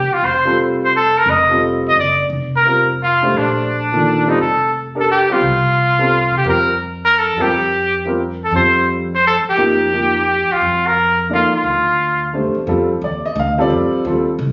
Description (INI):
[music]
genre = modal jazz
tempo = 174 BPM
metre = 3/4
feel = swing 65% on 8ths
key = F mixolydian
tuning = A4 = 440 Hz
[part]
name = clear trumpet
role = melody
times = 0.0-12.3 s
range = D4 to Eb5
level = -17 LUFS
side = equal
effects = none
[part]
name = upright bass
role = bass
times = 0.0-14.5 s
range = F1 to C3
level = -26 LUFS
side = equal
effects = none
[part]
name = clear baby grand piano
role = accompaniment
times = 0.5-14.3 s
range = Eb3 to F5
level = -21 LUFS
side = equal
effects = none
[sound]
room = moderate club reverb, RT60 0.8 s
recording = recorded on a phone in the room, studio reverb, compression, nothing above 7.5 kHz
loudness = -16 LUFS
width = mono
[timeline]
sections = 0.0-12.7 A section; 12.7-14.5 B section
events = none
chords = 0.2 F9; 2.3 Bb6/F; 4.4 F69; 6.5 Bb5/F; 8.5 F9; 10.6 Bb/F (rootless); 12.7 F13